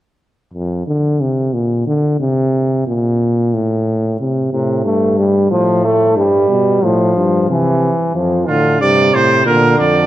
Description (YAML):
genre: classical, imitative canzona for brass ensemble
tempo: 91 BPM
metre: 3/4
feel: straight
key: F major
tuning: A4 = 444 Hz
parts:
  - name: mellow euphonium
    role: bass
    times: 0.5-10.1 s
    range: F2 to D3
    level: -15 LUFS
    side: equal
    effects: none
  - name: clear trombone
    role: accompaniment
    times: 4.5-10.1 s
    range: C3 to A3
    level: -14 LUFS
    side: equal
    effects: none
  - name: bright trumpet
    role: second line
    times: 8.5-10.1 s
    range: F4 to D5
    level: -13 LUFS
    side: right 3 dB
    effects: none
room: moderate concert hall reverb, RT60 2.2 s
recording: dark, warm production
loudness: -12 LUFS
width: side -14 dB against mid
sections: 0.2-10.1 A section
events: none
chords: 0.2 F5; 1.5 Bb; 2.2 Bbsus2; 3.5 N.C.; 4.2 C5; 5.5 F/A; 6.2 G; 7.5 C; 8.2 F; 9.5 Bb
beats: | 0.20 0.88 1.54 | 2.21 2.87 3.54 | 4.20 4.86 5.51 | 6.17 6.83 7.50 | 8.16 8.81 9.47